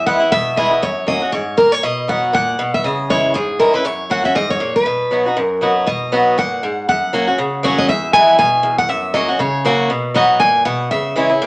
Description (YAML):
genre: bluegrass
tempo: 238 BPM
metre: 4/4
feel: swing 56% on 8ths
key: B major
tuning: A4 = 438 Hz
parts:
  - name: picked steel-string acoustic guitar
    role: melody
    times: 0.0-11.1 s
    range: G#4 to G#5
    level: -19 LUFS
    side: equal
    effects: none
  - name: picked swing-style acoustic guitar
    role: accompaniment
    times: 0.0-11.5 s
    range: E2 to F#4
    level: -19 LUFS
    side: equal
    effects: none
room: wet studio reverb, RT60 0.8 s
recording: none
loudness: -16 LUFS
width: mono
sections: 0.0-5.9 A section; 5.9-11.5 A section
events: none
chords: 0.0 E; 0.8 F#; 1.8 B; 2.8 C#m; 3.9 F#; 4.9 B; 6.9 F#; 7.9 E; 8.9 F#; 9.9 B; 10.9 C#m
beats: 0.06 0.32 0.57 | 0.82 1.07 1.33 1.58 | 1.83 2.08 2.34 2.59 | 2.84 3.09 3.35 3.60 | 3.85 4.10 4.36 4.61 | 4.86 5.11 5.37 5.62 | 5.87 6.12 6.37 6.63 | 6.88 7.13 7.38 7.63 | 7.89 8.14 8.39 8.64 | 8.89 9.15 9.40 9.65 | 9.90 10.15 10.40 10.66 | 10.91 11.16 11.41